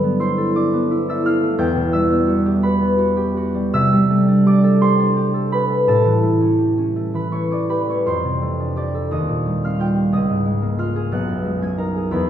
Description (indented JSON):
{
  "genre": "classical, solo harp piece",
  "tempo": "51-62 BPM (dotted quarters)",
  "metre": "6/8",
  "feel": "rubato",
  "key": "unclear",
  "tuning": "A4 = 440 Hz",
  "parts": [
    { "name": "concert harp", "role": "solo", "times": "0.0-12.3 s", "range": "B1 to G#6", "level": "-16 LUFS", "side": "equal", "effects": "none" }
  ],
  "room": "wet recital hall reverb, RT60 1.5 s",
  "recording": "recorded in a church or concert hall",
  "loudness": "-16 LUFS",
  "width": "side -10 dB against mid",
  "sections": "0.0-12.3 A section",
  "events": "none",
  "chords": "0.0 G69; 1.6 Emadd9; 3.7 C69; 5.9 A9; 8.1 F69; 9.1 Eb69; 10.1 C#69; 11.1 B69",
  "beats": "0.55 | 1.59 2.62 | 3.74 4.81 | 5.87 6.96 | 8.06 9.11 | 10.12 11.12 | 12.11"
}